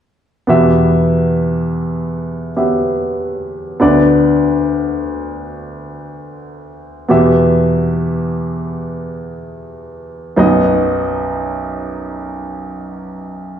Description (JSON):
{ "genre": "pop", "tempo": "free time", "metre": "none", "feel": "none", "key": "E minor", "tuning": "A4 = 440 Hz", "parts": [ { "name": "warm grand piano", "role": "accompaniment", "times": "0.5-13.6 s", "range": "B1 to E5", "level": "-14 LUFS", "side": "equal", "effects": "none" } ], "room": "wet recital hall reverb, RT60 1.5 s", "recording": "recorded in a church or concert hall", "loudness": "-13 LUFS", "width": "side -9 dB against mid", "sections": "0.5-13.6 A section", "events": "none", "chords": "0.5 Emadd9; 3.8 Bm/D; 7.1 Emadd9; 10.4 B" }